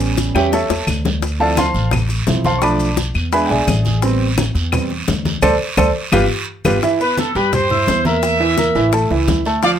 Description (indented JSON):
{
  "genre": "latin, salsa",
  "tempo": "171 BPM",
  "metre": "4/4",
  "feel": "straight",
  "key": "unclear",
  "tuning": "A4 = 442 Hz",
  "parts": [
    { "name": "clear concert grand piano", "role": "accompaniment", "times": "0.0-9.8 s", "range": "E3 to E6", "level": "-17 LUFS", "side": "right 2 dB", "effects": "none" },
    { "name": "upright bass", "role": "bass", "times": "0.0-9.8 s", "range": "G1 to G2", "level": "-20 LUFS", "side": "equal", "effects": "none" },
    { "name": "congas", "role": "percussion", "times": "0.0-9.8 s", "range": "none", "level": "-23 LUFS", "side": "left 2 dB", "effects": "none" },
    { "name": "maracas", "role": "percussion", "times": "0.0-9.8 s", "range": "none", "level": "-32 LUFS", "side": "left 4 dB", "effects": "none" },
    { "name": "bongos", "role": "percussion", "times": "0.2-9.8 s", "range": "none", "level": "-23 LUFS", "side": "left 8 dB", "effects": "none" },
    { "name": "guiro", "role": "percussion", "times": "0.2-9.8 s", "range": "none", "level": "-28 LUFS", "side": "right 5 dB", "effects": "none" },
    { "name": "claves", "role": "percussion", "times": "0.3-6.7 s", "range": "none", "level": "-25 LUFS", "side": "left 5 dB", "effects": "none" },
    { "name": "clear trumpet section", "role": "melody", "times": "7.0-9.7 s", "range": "A4 to E5", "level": "-18 LUFS", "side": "equal", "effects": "none" }
  ],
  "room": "light reverb",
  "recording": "none",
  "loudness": "-14 LUFS",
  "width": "side -9 dB against mid",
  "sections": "0.0-6.8 A section; 6.8-9.8 B section",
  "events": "grand piano solo 0.0-6.8; drum fill 0.4-1.2; band accent 5.4-6.8",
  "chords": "0.0 A7; 1.2 Dm7; 2.6 Bm7b5; 3.3 E7; 4.0 Am7; 5.4 D5; 6.1 G7; 6.8 Cmaj7; 8.2 A5; 8.9 A"
}